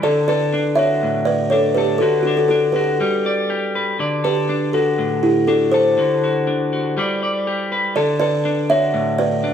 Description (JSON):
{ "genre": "highlife", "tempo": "121 BPM", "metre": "4/4", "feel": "swing 55% on 16ths", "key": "D major", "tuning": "A4 = 442 Hz", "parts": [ { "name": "buzzing kalimba", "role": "melody", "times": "0.0-9.5 s", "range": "D4 to E5", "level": "-17 LUFS", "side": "equal", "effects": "none" }, { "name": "electric guitar at the edge of break-up", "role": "accompaniment", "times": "0.0-9.5 s", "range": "A2 to D5", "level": "-21 LUFS", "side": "left 1 dB", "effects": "spring reverb" } ], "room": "moderate studio ambience, RT60 0.5 s", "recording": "band playing live in one room", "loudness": "-16 LUFS", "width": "side -8 dB against mid", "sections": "0.0-9.5 A section", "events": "none", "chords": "0.0 D; 3.0 G; 4.0 D; 6.0 D7; 7.0 G; 8.0 D" }